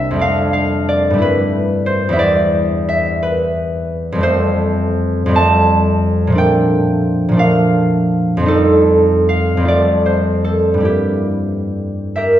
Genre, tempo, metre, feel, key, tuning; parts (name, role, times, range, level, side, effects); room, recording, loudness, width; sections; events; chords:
classical, solo harp piece; 44-62 BPM (dotted quarters); 6/8; rubato; A4 = 440 Hz
concert harp; solo; 0.0-12.4 s; C2 to A5; -12 LUFS; equal
wet recital hall reverb, RT60 1.6 s; heard from further back in the room; -12 LUFS; side -12 dB against mid
0.0-12.4 A section
0.2 F69; 1.2 G69; 2.2 Em7; 4.2 Fadd9; 6.4 Bbmaj7; 8.5 F9; 9.7 Fadd9; 10.8 Gm6